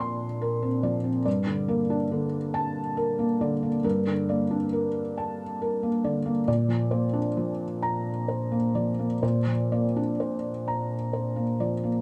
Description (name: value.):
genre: neoclassical minimalist piano.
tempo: 41-48 BPM (dotted quarters).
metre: 6/8.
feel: rubato.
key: unclear.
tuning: A4 = 440 Hz.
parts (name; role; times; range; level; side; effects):
felt-muted upright piano; solo; 0.0-12.0 s; G2 to C6; -27 LUFS; equal; none.
room: moderate small room reverb, RT60 0.5 s.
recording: none.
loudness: -27 LUFS.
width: mono.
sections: 0.0-12.0 A section.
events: none.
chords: 0.0 Bbadd9; 1.3 Gmadd9; 6.5 Bbadd9.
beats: | 1.26 2.55 | 3.84 5.16 | 6.47 7.82 | 9.22 10.66.